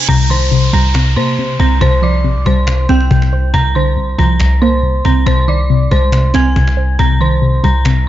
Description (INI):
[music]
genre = hip hop, trap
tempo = 139 BPM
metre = 4/4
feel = half-time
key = C minor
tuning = A4 = 438 Hz
[part]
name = dark detuned synth bell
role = melody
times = 0.0-8.0 s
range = C5 to Bb6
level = -18 LUFS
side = equal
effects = chorus, low-pass filter, digital delay
[part]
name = warbly dusty pluck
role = accompaniment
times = 0.0-8.1 s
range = C2 to C5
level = -15 LUFS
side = left 1 dB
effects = chorus, low-pass filter
[part]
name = reverse cymbal and downlifter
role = sound effects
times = 0.0-3.5 s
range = none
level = -22 LUFS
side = right 2 dB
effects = none
[part]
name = hard-hitting 808-style bass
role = bass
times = 0.1-8.1 s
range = Bb1 to C3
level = -13 LUFS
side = equal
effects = none
[part]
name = cajon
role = drums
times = 0.1-8.0 s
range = none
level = -20 LUFS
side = equal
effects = none
[sound]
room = digital ambience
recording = nothing above 7.5 kHz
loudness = -10 LUFS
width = side -13 dB against mid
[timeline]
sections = 0.1-8.1 A section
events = none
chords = 0.1 Cm7; 1.8 Fsus2; 3.5 Bbadd9/C; 5.3 Ab/C; 7.0 Cm7